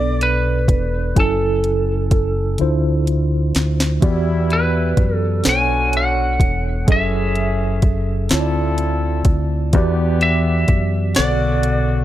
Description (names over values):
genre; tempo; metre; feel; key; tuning
slow six-eight R&B; 42 BPM (dotted quarters); 6/8; straight; E dorian; A4 = 440 Hz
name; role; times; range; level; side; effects
lightly driven lead guitar; melody; 0.0-12.0 s; A4 to G#5; -21 LUFS; right 1 dB; none
mellow tine electric piano; accompaniment; 0.0-12.0 s; B2 to G#5; -21 LUFS; right 1 dB; medium stereo tremolo
deep dub fingered electric bass; bass; 0.0-12.0 s; E1 to F#2; -20 LUFS; equal; none
smooth R&B drum kit; drums; 0.2-11.9 s; hi-hat, kick drum, snare drum; -16 LUFS; equal; none
clear horn section; stabs; 4.0-12.0 s; B2 to A4; -28 LUFS; left 4 dB; tape echo
room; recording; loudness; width
little or no reverb; none; -15 LUFS; side -13 dB against mid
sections
0.0-12.0 A section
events
drum fill 2.6-4.0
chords
0.0 Bm7; 1.2 F#m9; 2.6 Dm9; 4.0 Em9; 5.5 Bm9; 6.9 F#m9; 8.3 Dm9; 9.7 Em9; 11.2 Bm9